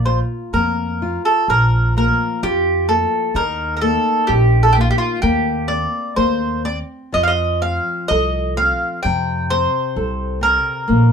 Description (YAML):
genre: fado-style ballad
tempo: 64 BPM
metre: 2/4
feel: rubato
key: unclear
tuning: A4 = 439 Hz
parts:
  - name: mandolin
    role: melody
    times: 0.0-11.1 s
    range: F4 to G5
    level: -18 LUFS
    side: equal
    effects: none
  - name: flamenco guitar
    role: accompaniment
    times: 0.0-11.1 s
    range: C3 to A4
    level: -23 LUFS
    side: left 2 dB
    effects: none
  - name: upright bass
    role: bass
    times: 0.0-11.1 s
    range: Bb1 to F2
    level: -19 LUFS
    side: right 1 dB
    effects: none
room: light reverb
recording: minimal, uncompressed stereo recording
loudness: -15 LUFS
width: side -6 dB against mid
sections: 0.0-11.1 A section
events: none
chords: 0.0 Bb5; 3.4 Eb5; 7.2 F